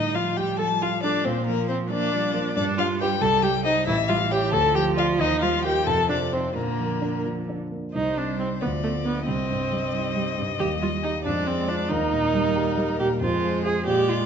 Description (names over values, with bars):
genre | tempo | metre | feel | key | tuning
quick classical-period movement for piano quartet | 91 BPM (dotted quarters) | 6/8 | straight | Bb major, C minor from 7.9 s | A4 = 440 Hz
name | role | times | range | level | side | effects
rich violin | melody | 0.0-14.3 s | Bb4 to A5 | -27 LUFS | left 9 dB | none
rich cello | second line | 0.0-14.3 s | C3 to Bb3 | -32 LUFS | right 7 dB | none
dark concert grand piano | accompaniment | 0.0-14.3 s | A1 to D5 | -27 LUFS | equal | none
rich viola | accompaniment | 0.0-14.3 s | A3 to A4 | -25 LUFS | right 3 dB | none
room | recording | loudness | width
wet recital hall reverb, RT60 1.4 s | nothing above 7.8 kHz | -21 LUFS | side -7 dB against mid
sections
0.0-7.9 A section; 7.9-14.3 B section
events
none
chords
0.0 F/A; 1.3 Bb; 2.6 G7; 3.2 Cm; 3.9 A7; 4.5 Dm; 5.2 Eb; 5.9 F5; 6.6 Bb; 7.9 Cm; 8.6 Bdim/D; 9.3 Cm; 10.6 Eb; 11.3 Ddim/F; 11.9 Eb; 13.2 Fm